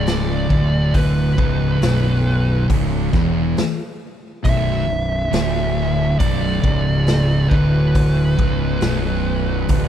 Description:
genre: stoner and doom metal.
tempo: 68 BPM.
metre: 4/4.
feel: straight.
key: B minor.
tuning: A4 = 440 Hz.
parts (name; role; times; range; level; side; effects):
fuzz lead guitar; melody; 0.0-9.9 s; B4 to E5; -26 LUFS; right 2 dB; distortion, tape echo.
thick fuzz guitar; riff; 0.0-9.9 s; B1 to E2; -21 LUFS; left 8 dB; distortion.
thick fuzz guitar; riff; 0.0-9.9 s; B1 to E2; -21 LUFS; right 8 dB; distortion.
fuzz fingered electric bass; bass; 0.0-9.9 s; B0 to E1; -22 LUFS; equal; overdrive.
raw garage drum kit; drums; 0.1-9.9 s; hi-hat, kick drum, snare drum; -22 LUFS; equal; none.
room: little or no reverb.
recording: none.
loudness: -15 LUFS.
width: side -10 dB against mid.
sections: 0.0-9.9 A section.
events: none.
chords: 0.0 Bm.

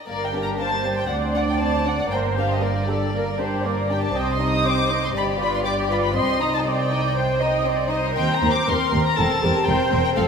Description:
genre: quick classical-period movement for string orchestra.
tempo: 119 BPM.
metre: 4/4.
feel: straight.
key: G minor.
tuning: A4 = 439 Hz.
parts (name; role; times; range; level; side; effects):
warm symphonic violin section; melody; 0.0-10.2 s; D5 to Eb6; -26 LUFS; left 3 dB; none.
warm symphonic violin section; second line; 0.1-10.3 s; Bb3 to Eb5; -24 LUFS; left 1 dB; none.
dark symphonic viola section; accompaniment; 0.1-10.3 s; G4 to Eb5; -26 LUFS; right 2 dB; none.
dark symphonic double bass section; bass; 0.1-10.3 s; E1 to Eb2; -27 LUFS; right 2 dB; none.
warm studio cello section; bass; 0.1-10.3 s; C2 to C3; -28 LUFS; right 2 dB; none.
room: wet scoring stage reverb, RT60 1.6 s.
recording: none.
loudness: -19 LUFS.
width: side -6 dB against mid.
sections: 0.1-10.3 A section.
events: none.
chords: 0.1 Gm; 1.1 D7; 2.1 Gm; 4.2 Cm; 5.2 G7; 6.2 Cm; 8.2 Cm7/Eb; 9.2 C7/E.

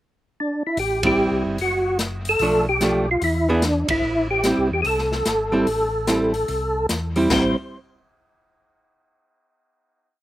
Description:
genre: soul jazz organ trio.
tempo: 147 BPM.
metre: 4/4.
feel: swing 64% on 8ths.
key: A minor.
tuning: A4 = 440 Hz.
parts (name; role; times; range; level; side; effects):
percussive tonewheel organ; melody; 0.4-7.6 s; D4 to C5; -21 LUFS; equal; slow rotary speaker, chorus vibrato.
mellow tonewheel organ; bass; 0.8-7.5 s; F#1 to E2; -28 LUFS; left 1 dB; slow rotary speaker.
open jazz drum kit; drums; 0.8-7.4 s; crash cymbal, hi-hat, kick drum, ride cymbal, snare drum; -28 LUFS; left 1 dB; none.
archtop guitar, miked and amplified; accompaniment; 1.0-7.6 s; E3 to G#4; -21 LUFS; right 1 dB; none.
room: light reverb.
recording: recorded outdoors, with no room sound.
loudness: -18 LUFS.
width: side -14 dB against mid.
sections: 0.0-0.8 pickup bar; 0.8-7.3 A section; 7.3-8.9 final chord.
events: band accent 1.0, 3.8.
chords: 0.0 N.C.; 0.8 Am7; 1.6 F#m; 2.4 Bm7b5; 3.2 E7; 4.0 Am7.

